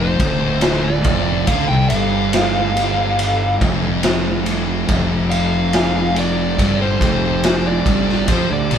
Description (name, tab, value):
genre	stoner and doom metal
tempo	70 BPM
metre	4/4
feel	straight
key	D minor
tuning	A4 = 440 Hz
part	fuzz lead guitar	melody	0.0-8.8 s	C5 to G5	-21 LUFS	right 1 dB	distortion
part	swarming drone	sustained chords	0.1-8.8 s	D3 to G4	-31 LUFS	equal	none
part	thick fuzz guitar	riff	0.0-8.8 s	D2 to F3	-22 LUFS	left 8 dB	distortion
part	thick fuzz guitar	riff	0.0-8.8 s	D2 to F3	-22 LUFS	right 5 dB	distortion
part	fuzz fingered electric bass	bass	0.0-8.8 s	D1 to F2	-22 LUFS	right 1 dB	overdrive
part	raw garage drum kit	drums	0.2-8.8 s	kick drum, ride cymbal, snare drum	-20 LUFS	equal	none
room	light reverb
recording	band playing live in one room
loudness	-14 LUFS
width	side -8 dB against mid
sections	0.0-8.8 A section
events	none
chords	0.0 Dm; 4.9 F5